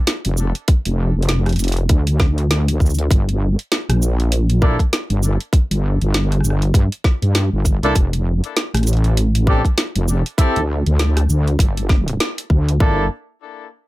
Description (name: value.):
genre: glitch hop.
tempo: 99 BPM.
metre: 4/4.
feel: swing 58% on 16ths.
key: G dorian.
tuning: A4 = 440 Hz.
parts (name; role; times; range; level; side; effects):
drum and bass drum kit; drums; 0.1-12.8 s; hi-hat, rim click, shaker, snare drum; -22 LUFS; equal; none.
wobble bass; bass; 0.3-13.1 s; F1 to G2; -16 LUFS; equal; chorus, tube saturation.
electronic kick drum; drums; 0.7-12.9 s; none; -14 LUFS; equal; none.
mellow horn section; stabs; 4.6-13.0 s; Bb3 to A4; -22 LUFS; equal; vintage 12-bit sampler grit, sidechain pumping, ping-pong delay.
room: little or no reverb.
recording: none.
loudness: -15 LUFS.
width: side -18 dB against mid.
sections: 0.0-12.8 A section; 12.8-13.9 B section.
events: drop 0.0-12.8; band accent 12.2-12.5.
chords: 0.0 F5; 3.1 Gm; 8.0 F; 10.4 Dsus4; 12.8 Gm69.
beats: 0.08 | 0.69 1.29 1.90 2.50 | 3.11 3.71 4.32 4.93 | 5.53 6.14 6.75 7.35 | 7.96 8.56 9.17 9.78 | 10.38 10.99 11.59 12.20 | 12.81.